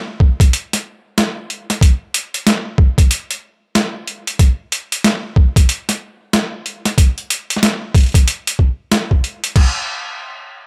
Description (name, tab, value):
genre	glitch hop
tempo	93 BPM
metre	4/4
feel	swing 62% on 16ths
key	none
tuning	none
part	electronic kick drum	drums	0.2-9.7 s	none	-12 LUFS	equal	overdrive, small room ambience
part	boom bap sampler-style drum kit	drums	0.4-9.7 s	crash cymbal, hi-hat, snare drum	-19 LUFS	equal	overdrive, small room ambience
room	little or no reverb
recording	none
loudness	-16 LUFS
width	mono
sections	0.0-9.6 A section; 9.6-10.7 B section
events	drop 0.0-9.6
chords	none